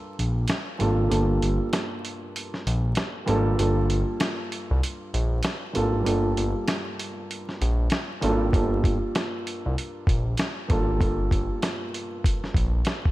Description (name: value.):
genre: hip hop, boom-bap hip-hop.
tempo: 97 BPM.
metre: 4/4.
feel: swing 61% on 16ths.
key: G minor.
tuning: A4 = 440 Hz.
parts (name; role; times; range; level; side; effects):
dark concert grand piano; accompaniment; 0.0-13.1 s; G2 to A4; -28 LUFS; right 1 dB; cassette tape, high-pass filter, low-pass filter.
smooth synth bass; bass; 0.2-12.8 s; G1 to C2; -24 LUFS; equal; none.
dusty soul sampler-style drum kit; drums; 0.2-13.1 s; hi-hat, kick drum, snare drum; -27 LUFS; equal; none.
room: light reverb, small room reverb.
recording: vinyl crackle.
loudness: -23 LUFS.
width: side -17 dB against mid.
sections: 0.0-13.1 A section.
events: break 0.0-8.5.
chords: 0.0 Gm7.